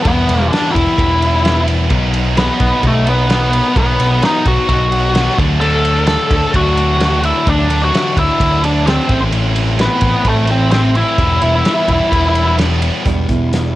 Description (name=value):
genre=quiet-loud alternative rock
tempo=129 BPM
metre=4/4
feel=straight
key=E minor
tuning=A4 = 441 Hz
part: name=octave-fuzz lead guitar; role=melody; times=0.0-12.5 s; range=A3 to A5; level=-16 LUFS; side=equal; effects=distortion, cassette tape
part: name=heavy high-gain guitar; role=riff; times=0.0-13.1 s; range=A2 to E4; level=-22 LUFS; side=right 8 dB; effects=distortion, cassette tape
part: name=sludgy distorted guitar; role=riff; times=0.0-13.8 s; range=E2 to E4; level=-21 LUFS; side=left 7 dB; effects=overdrive, cassette tape
part: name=overdriven picked electric bass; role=bass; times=0.1-13.8 s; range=E1 to D2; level=-16 LUFS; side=equal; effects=none
part: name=loose indie drum kit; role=drums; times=0.1-13.6 s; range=crash cymbal, hi-hat, kick drum, ride cymbal, snare drum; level=-19 LUFS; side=equal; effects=cassette tape
part: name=fingerpicked steel-string acoustic guitar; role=arpeggios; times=13.1-13.8 s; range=E2 to E4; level=-19 LUFS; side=right 6 dB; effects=cassette tape, analog delay
room=light reverb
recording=home recording on cassette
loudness=-11 LUFS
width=side -16 dB against mid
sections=0.0-13.1 A section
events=none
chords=0.0 Em; 1.9 B; 5.4 D; 9.1 Am; 11.2 Em